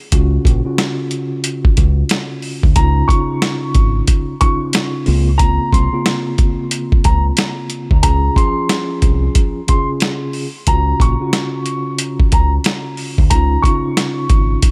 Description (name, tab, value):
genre	hip hop, boom-bap hip-hop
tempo	91 BPM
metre	4/4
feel	swing 61% on 16ths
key	unclear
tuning	A4 = 440 Hz
part	mellow tine electric piano	accompaniment	0.1-14.7 s	Db3 to Ab4	-24 LUFS	equal	high-pass filter, low-pass filter
part	deep dub fingered electric bass	bass	0.1-14.6 s	Ab1 to D2	-18 LUFS	equal	none
part	boom bap sampler-style drum kit	drums	0.1-14.7 s	hi-hat, kick drum, snare drum	-17 LUFS	equal	none
part	clear upright piano	melody	2.8-14.6 s	Bb5 to Db6	-24 LUFS	equal	high-pass filter, low-pass filter, tape echo
room	little or no reverb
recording	none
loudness	-15 LUFS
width	mono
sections	0.0-14.7 A section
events	break 0.0-2.8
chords	0.1 Gbmaj7(no3); 2.8 Dbadd9; 5.1 Bbmadd9; 8.0 Fm; 10.7 Gbmaj7(no3); 13.3 Dbadd9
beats	| 0.12 0.78 1.44 2.10 | 2.76 3.42 4.08 4.74 | 5.40 6.06 6.72 7.38 | 8.04 8.70 9.36 10.01 | 10.67 11.33 11.99 12.65 | 13.31 13.97 14.63